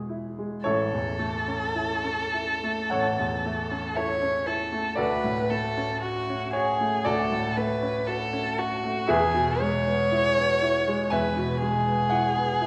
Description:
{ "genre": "classical, romantic duo for violin and grand piano", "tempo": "49-60 BPM", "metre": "4/4", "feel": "rubato", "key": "A major", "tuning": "A4 = 441 Hz", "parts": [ { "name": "bright baby grand piano", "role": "accompaniment", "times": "0.0-12.7 s", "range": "A1 to G#5", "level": "-29 LUFS", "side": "equal", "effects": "none" }, { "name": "warm violin", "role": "melody", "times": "0.7-12.7 s", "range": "F#4 to C#5", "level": "-29 LUFS", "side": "equal", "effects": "none" } ], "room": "wet recital hall reverb, RT60 1.2 s", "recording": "heard from further back in the room", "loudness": "-26 LUFS", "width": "mono", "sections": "0.7-12.7 A section", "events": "none", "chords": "0.0 E; 0.7 A; 5.0 Dmaj7; 9.1 E", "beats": "| 0.67 1.75 2.92 3.97 | 4.98 6.03 7.06 8.08 | 9.10 10.11 11.12 12.12" }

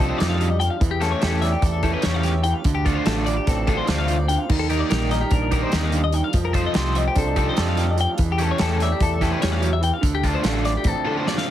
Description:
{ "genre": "math rock and midwest emo", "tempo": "293 BPM (eighths)", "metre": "9/8", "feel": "straight", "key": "unclear", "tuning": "A4 = 440 Hz", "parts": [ { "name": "electric guitar through a small old amp", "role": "accompaniment", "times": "0.0-11.5 s", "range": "A2 to D5", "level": "-27 LUFS", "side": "right 7 dB", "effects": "none" }, { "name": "twelve-string electric guitar", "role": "arpeggios", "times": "0.0-11.5 s", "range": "G4 to G5", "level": "-26 LUFS", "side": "left 7 dB", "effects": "analog delay" }, { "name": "crunchy overdriven guitar", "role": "riff", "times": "0.0-11.5 s", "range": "D3 to A4", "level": "-26 LUFS", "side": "right 1 dB", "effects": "none" }, { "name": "growling fingered electric bass", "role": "bass", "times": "0.0-10.9 s", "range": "A1 to F2", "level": "-23 LUFS", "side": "equal", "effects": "overdrive" }, { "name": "loose indie drum kit", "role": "drums", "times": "0.0-11.5 s", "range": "crash cymbal, hi-hat, kick drum, snare drum", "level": "-24 LUFS", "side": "equal", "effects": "none" } ], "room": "light reverb", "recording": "heavily compressed radio sound, multiband compression", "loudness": "-18 LUFS", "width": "side -11 dB against mid", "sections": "0.0-11.5 A section", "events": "drum fill 11.3", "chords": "0.0 F13; 0.8 A7b13/E; 2.7 Dm7; 4.5 Ebmaj7; 6.3 F13; 8.2 A7b13/E; 10.0 Dm7", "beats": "0.20 0.40 0.61 | 0.81 1.02 1.22 1.43 1.63 1.83 2.04 2.24 2.45 | 2.65 2.86 3.06 3.27 3.47 3.68 3.88 4.09 4.29 | 4.50 4.70 4.91 5.11 5.32 5.52 5.73 5.93 6.14 | 6.34 6.55 6.75 6.96 7.16 7.37 7.57 7.78 7.98 | 8.19 8.39 8.60 8.80 9.01 9.21 9.42 9.62 9.83 | 10.03 10.24 10.44 10.65 10.85 11.05 11.26 11.46" }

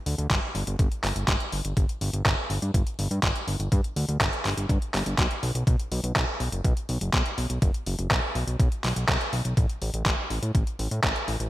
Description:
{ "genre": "italo disco", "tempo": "123 BPM", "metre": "4/4", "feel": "straight", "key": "unclear", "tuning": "A4 = 441 Hz", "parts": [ { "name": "fat analog bass", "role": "bass", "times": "0.1-11.5 s", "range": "F#1 to A2", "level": "-28 LUFS", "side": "equal", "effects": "none" }, { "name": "detuned 8-bit digital drum machine", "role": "drums", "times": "0.1-11.5 s", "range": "handclaps, hi-hat", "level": "-28 LUFS", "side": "equal", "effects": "overdrive, gated reverb" }, { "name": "electronic kick drum", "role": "drums", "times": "0.3-11.1 s", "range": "none", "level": "-25 LUFS", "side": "equal", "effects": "overdrive" } ], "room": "light reverb", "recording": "bright 1980s-style digital production, vinyl crackle", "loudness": "-24 LUFS", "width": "side -16 dB against mid", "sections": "0.0-11.5 A section", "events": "none", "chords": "none", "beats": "0.30 0.79 1.28 | 1.77 2.25 2.74 3.23 | 3.72 4.21 4.69 5.18 | 5.67 6.16 6.64 7.13 | 7.62 8.11 8.60 9.08 | 9.57 10.06 10.55 11.04" }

